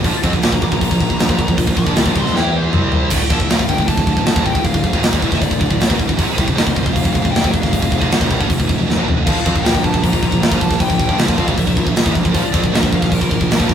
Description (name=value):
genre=heavy metal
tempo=156 BPM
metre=4/4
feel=straight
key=D minor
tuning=A4 = 439 Hz
part: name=heavy high-gain guitar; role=riff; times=0.0-13.7 s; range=D2 to E4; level=-20 LUFS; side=right 4 dB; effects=distortion
part: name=high-gain distorted guitar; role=riff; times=0.0-13.7 s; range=D2 to E4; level=-25 LUFS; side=left 5 dB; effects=distortion
part: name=fuzz picked electric bass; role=bass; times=0.0-13.7 s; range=D1 to F2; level=-21 LUFS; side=equal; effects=overdrive
part: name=tight metal drum kit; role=drums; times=0.0-13.7 s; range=crash cymbal, hi-hat, kick drum, snare drum, toms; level=-16 LUFS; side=equal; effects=none
part: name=high-gain lead guitar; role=melody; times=0.4-13.7 s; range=Bb4 to D6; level=-24 LUFS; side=left 4 dB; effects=distortion
room=light reverb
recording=rough rehearsal-room recording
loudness=-13 LUFS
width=side -8 dB against mid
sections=0.0-3.1 A section; 3.1-13.7 B section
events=drum fill 2.3-3.1, 8.9-9.3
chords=0.0 Bb5; 2.3 E5; 2.7 C5; 3.1 Dm; 6.2 F5; 9.3 Bb5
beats=| 0.05 0.43 0.81 1.19 | 1.58 1.96 2.34 2.73 | 3.11 3.50 3.88 4.26 | 4.65 5.03 5.42 5.80 | 6.18 6.57 6.95 7.33 | 7.72 8.10 8.49 8.87 | 9.26 9.64 10.03 10.41 | 10.80 11.18 11.57 11.96 | 12.34 12.73 13.11 13.50